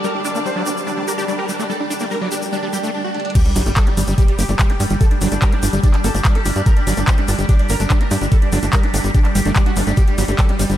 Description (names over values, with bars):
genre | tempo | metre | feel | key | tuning
psychedelic trance | 145 BPM | 4/4 | straight | unclear | A4 = 440 Hz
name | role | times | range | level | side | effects
dense compressed supersaw | melody | 0.0-10.7 s | G3 to C5 | -25 LUFS | right 1 dB | phaser, vintage 12-bit sampler grit, sidechain pumping, analog delay
overtone-sweeping drone | sustained chords | 0.0-10.8 s | G3 to C5 | -26 LUFS | right 1 dB | chorus, built-in reverb, sidechain pumping
overdriven acid bass | riff | 0.0-10.8 s | F#3 to G4 | -25 LUFS | equal | distortion, auto-pan, sidechain pumping, analog delay
tube shaker | percussion | 0.0-10.8 s | none | -31 LUFS | left 4 dB | none
rich symphonic string section | texture | 0.0-2.9 s | G4 to A5 | -31 LUFS | equal | sidechain pumping
garage drum kit | drums | 3.1-10.8 s | crash cymbal, handclaps, hi-hat | -25 LUFS | equal | low-pass filter on snare, low-pass filter on hats, low-pass filter on toms, low-pass filter on cymbals, low-pass filter on room
electronic kick drum | drums | 3.4-10.5 s | none | -14 LUFS | equal | none
sub drop | sound effects | 3.4-5.0 s | none | -24 LUFS | equal | none
tight sequencer bass | bass | 3.6-10.8 s | G1 to G2 | -18 LUFS | equal | tube saturation
room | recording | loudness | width
light reverb | none | -15 LUFS | side -12 dB against mid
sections
0.0-3.4 A section; 3.4-10.8 B section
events
drum fill 3.1; drop 3.4-10.8; impact 3.4-5.0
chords
0.0 G5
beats
| 0.04 0.46 0.87 1.28 | 1.70 2.11 2.52 2.94 | 3.35 3.77 4.18 4.59 | 5.01 5.42 5.83 6.25 | 6.66 7.08 7.49 7.90 | 8.32 8.73 9.14 9.56 | 9.97 10.39